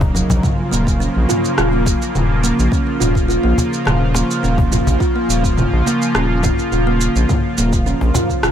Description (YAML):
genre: organic downtempo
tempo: 105 BPM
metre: 4/4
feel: straight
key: unclear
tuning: A4 = 440 Hz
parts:
  - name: warm analog pad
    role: sustained chords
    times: 0.0-8.5 s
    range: Db3 to F4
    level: -22 LUFS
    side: right 1 dB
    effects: chorus, sidechain pumping
  - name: kalimba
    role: arpeggios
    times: 0.0-8.5 s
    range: Db3 to F4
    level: -19 LUFS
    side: equal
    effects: digital delay
  - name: round analog bass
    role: bass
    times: 0.0-8.5 s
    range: Eb1 to Bb1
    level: -18 LUFS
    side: equal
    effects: sidechain pumping
  - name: electronic kick drum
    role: drums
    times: 0.0-8.4 s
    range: none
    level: -19 LUFS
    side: equal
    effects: none
  - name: cajon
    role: percussion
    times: 0.0-8.3 s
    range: none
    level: -22 LUFS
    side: left 2 dB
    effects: none
  - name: deep house drum kit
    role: drums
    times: 0.2-8.5 s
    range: rim click, shaker, toms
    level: -22 LUFS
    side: right 1 dB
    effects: none
room: little or no reverb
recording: none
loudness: -14 LUFS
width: side -9 dB against mid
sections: 0.0-8.5 A section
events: none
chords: 0.4 Bbm/Eb